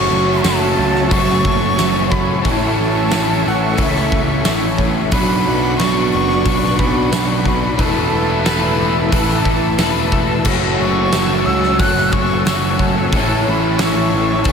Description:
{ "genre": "rock, shoegaze and dream pop", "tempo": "90 BPM", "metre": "4/4", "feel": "straight", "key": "unclear", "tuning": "A4 = 441 Hz", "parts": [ { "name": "breathy jazz flute", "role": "melody", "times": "0.0-14.5 s", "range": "E5 to F#6", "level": "-21 LUFS", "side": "left 1 dB", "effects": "diffuse ambient delay" }, { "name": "warm analog pad", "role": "sustained chords", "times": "0.0-14.5 s", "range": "F#4 to E6", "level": "-24 LUFS", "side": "right 1 dB", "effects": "chorus" }, { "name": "crunchy overdriven guitar", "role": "riff", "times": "0.0-14.5 s", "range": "A2 to B4", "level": "-20 LUFS", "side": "left 8 dB", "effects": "ensemble chorus" }, { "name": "overdriven electric guitar", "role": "riff", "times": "0.0-14.5 s", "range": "A2 to B4", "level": "-20 LUFS", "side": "right 9 dB", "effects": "reverse reverb" }, { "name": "fuzz picked electric bass", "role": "bass", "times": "0.0-14.5 s", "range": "E1 to C#2", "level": "-20 LUFS", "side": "equal", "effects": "overdrive" }, { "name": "huge arena drum kit", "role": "drums", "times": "0.4-14.5 s", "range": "crash cymbal, hi-hat, kick drum, snare drum", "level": "-20 LUFS", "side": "equal", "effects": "none" }, { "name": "tambourine", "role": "percussion", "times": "0.5-14.0 s", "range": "none", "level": "-30 LUFS", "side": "right 12 dB", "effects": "none" } ], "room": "wet huge ambient reverb, RT60 9.1 s", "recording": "dreamy mix soaked in reverb", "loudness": "-13 LUFS", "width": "side -6 dB against mid", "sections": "0.0-14.5 A section", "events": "none", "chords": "0.0 F#m7; 2.4 A; 5.1 Bmadd9; 7.8 Esus4; 10.5 F#m7; 13.1 A" }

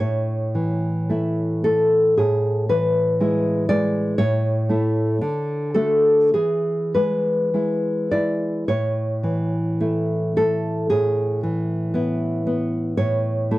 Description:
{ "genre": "romantic piece for solo classical guitar", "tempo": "50-61 BPM", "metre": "2/4", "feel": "rubato", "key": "A major", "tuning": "A4 = 440 Hz", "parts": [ { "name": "nylon-string guitar", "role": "solo", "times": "0.0-13.6 s", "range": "A2 to D5", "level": "-19 LUFS", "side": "equal", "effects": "none" } ], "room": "little or no reverb", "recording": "dry, close 1970s-style studio recording", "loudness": "-19 LUFS", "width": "side -17 dB against mid", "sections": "0.0-13.6 A section", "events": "none", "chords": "0.0 A; 2.2 E/A; 4.2 A; 5.2 D; 6.3 E; 8.7 A; 10.9 E5/A; 13.0 A" }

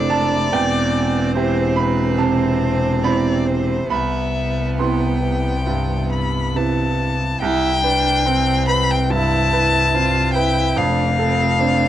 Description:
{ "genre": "neoclassical piano and strings", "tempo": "71 BPM", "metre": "4/4", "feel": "rubato", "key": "C major", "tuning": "A4 = 441 Hz", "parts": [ { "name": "rich violin", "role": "melody", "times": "0.0-11.9 s", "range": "B4 to B5", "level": "-21 LUFS", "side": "left 4 dB", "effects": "cassette tape" }, { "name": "rich cello", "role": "second line", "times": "0.0-11.9 s", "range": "B3 to F4", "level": "-24 LUFS", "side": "right 6 dB", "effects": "cassette tape" }, { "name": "bright upright piano", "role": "accompaniment", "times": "0.0-11.9 s", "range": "C2 to C6", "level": "-22 LUFS", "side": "right 6 dB", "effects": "cassette tape" }, { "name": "clear double bass", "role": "bass", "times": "0.0-11.9 s", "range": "E1 to C2", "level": "-21 LUFS", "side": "left 2 dB", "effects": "none" } ], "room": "light reverb", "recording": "home recording on cassette", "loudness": "-16 LUFS", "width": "side -12 dB against mid", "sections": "0.0-7.4 A section; 7.4-11.9 B section", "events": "none", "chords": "0.0 Fmaj7; 0.5 Cmaj7/E; 3.9 Cmaj7; 10.8 F" }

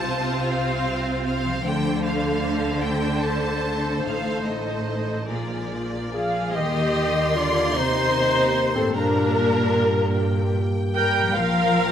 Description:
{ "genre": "cinematic, emotional film score for orchestra", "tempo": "50 BPM (dotted quarters)", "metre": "6/8", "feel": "rubato", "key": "unclear", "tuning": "A4 = 440 Hz", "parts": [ { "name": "warm symphonic violin section", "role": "melody", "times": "0.0-11.9 s", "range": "D5 to C6", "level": "-31 LUFS", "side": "left 2 dB", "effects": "none" }, { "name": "warm symphonic violin section", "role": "second line", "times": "0.0-11.9 s", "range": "C4 to C5", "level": "-29 LUFS", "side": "left 1 dB", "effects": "none" }, { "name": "rich studio viola section", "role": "accompaniment", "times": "0.0-11.9 s", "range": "F3 to G5", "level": "-26 LUFS", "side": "equal", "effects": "none" }, { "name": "concert harp", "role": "arpeggios", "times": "0.0-11.9 s", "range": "G2 to A5", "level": "-32 LUFS", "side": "left 6 dB", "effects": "none" }, { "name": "warm symphonic cello section", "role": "bass", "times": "0.0-11.9 s", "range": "A2 to G3", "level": "-28 LUFS", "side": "right 2 dB", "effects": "none" }, { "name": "warm symphonic double bass section", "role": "bass", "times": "0.0-11.9 s", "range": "A1 to G2", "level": "-29 LUFS", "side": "right 2 dB", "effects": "none" }, { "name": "mellow clarinet", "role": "second line", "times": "6.1-11.9 s", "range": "C4 to Bb4", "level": "-30 LUFS", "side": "equal", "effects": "none" }, { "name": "mellow large flute ensemble", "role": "second line", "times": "6.1-11.9 s", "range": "A4 to G5", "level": "-27 LUFS", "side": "equal", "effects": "none" }, { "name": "mellow French horn section", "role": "sustained chords", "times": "6.5-11.9 s", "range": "Bb3 to G4", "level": "-29 LUFS", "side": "left 4 dB", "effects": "none" } ], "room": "moderate scoring stage reverb, RT60 1.9 s", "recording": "none", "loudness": "-20 LUFS", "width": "side -9 dB against mid", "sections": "0.0-6.5 A section; 6.5-11.9 B section", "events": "none", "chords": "0.0 F/C; 1.7 Dm7; 4.0 Adim; 5.3 Bb7; 6.5 Eb; 9.0 Gm; 11.4 Bb5" }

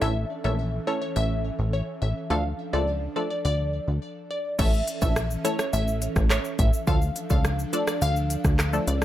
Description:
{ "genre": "dancehall", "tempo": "105 BPM", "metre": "4/4", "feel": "straight", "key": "D harmonic minor", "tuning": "A4 = 439 Hz", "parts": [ { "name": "glassy wavetable pluck", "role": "melody", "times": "0.0-9.0 s", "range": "C#5 to F5", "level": "-30 LUFS", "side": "left 1 dB", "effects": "chorus, digital delay" }, { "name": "punchy chord stab", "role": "accompaniment", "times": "0.0-8.9 s", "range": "E3 to A4", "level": "-30 LUFS", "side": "equal", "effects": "chorus" }, { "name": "airy breathy pad", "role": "sustained chords", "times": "0.0-9.0 s", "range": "E3 to A4", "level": "-35 LUFS", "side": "right 2 dB", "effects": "chorus, sidechain pumping" }, { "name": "plucky analog bass", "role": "bass", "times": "0.0-9.0 s", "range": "A1 to D2", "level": "-25 LUFS", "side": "equal", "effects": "none" }, { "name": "afro-pop drum kit", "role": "drums", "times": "4.6-9.0 s", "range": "crash cymbal, handclaps, hi-hat, kick drum, rim click, shaker", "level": "-24 LUFS", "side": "equal", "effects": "none" } ], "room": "little or no reverb", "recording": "none", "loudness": "-23 LUFS", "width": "side -13 dB against mid", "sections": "0.0-4.6 A section; 4.6-9.0 B section", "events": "stop 4.0-4.6", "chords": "0.0 A; 2.3 Dm; 4.6 A; 6.9 Dm" }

